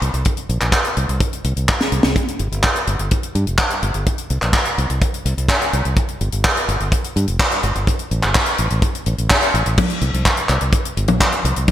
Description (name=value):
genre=italo disco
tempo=126 BPM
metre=4/4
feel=straight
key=unclear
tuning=A4 = 442 Hz
part: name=modern bright fingered electric bass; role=bass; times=0.0-11.7 s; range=F1 to G2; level=-20 LUFS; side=equal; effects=tube saturation
part: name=tight funk drum kit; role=drums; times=0.0-11.7 s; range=crash cymbal, handclaps, hi-hat, snare drum, toms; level=-18 LUFS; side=equal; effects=gated reverb
part: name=kick drum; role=drums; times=0.3-11.7 s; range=none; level=-19 LUFS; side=equal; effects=none
room=moderate lush hall reverb, RT60 1.7 s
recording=bright 1980s-style digital production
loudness=-16 LUFS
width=side -12 dB against mid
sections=0.0-2.2 A section; 2.2-9.8 B section; 9.8-11.7 C section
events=drum fill 1.8-2.2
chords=none